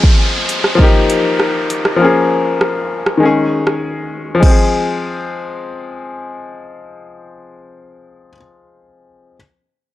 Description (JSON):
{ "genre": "dancehall", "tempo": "99 BPM", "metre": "4/4", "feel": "straight", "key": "F minor", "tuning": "A4 = 440 Hz", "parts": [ { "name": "clear concert grand piano", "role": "accompaniment", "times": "0.0-9.4 s", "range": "Eb3 to Ab4", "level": "-15 LUFS", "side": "left 3 dB", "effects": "sidechain pumping" }, { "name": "afro-pop drum kit", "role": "drums", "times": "0.0-4.6 s", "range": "crash cymbal, hi-hat, kick drum, rim click", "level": "-12 LUFS", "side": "equal", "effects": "none" }, { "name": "downlifter", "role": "sound effects", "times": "0.0-4.4 s", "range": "none", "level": "-22 LUFS", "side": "right 1 dB", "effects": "none" } ], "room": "little or no reverb", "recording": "dry, gritty hardware recording, cassette tape", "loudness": "-12 LUFS", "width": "side -14 dB against mid", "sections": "0.0-4.4 A section; 4.4-6.9 B section", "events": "break 3.8-4.4", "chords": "0.0 Fm; 0.8 Ebadd9; 2.0 Bbm7; 3.2 Dbsus2; 4.4 Fm", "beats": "0.18 0.79 1.40 | 2.00 2.61 3.21 3.82 | 4.43 5.03 5.64 6.25" }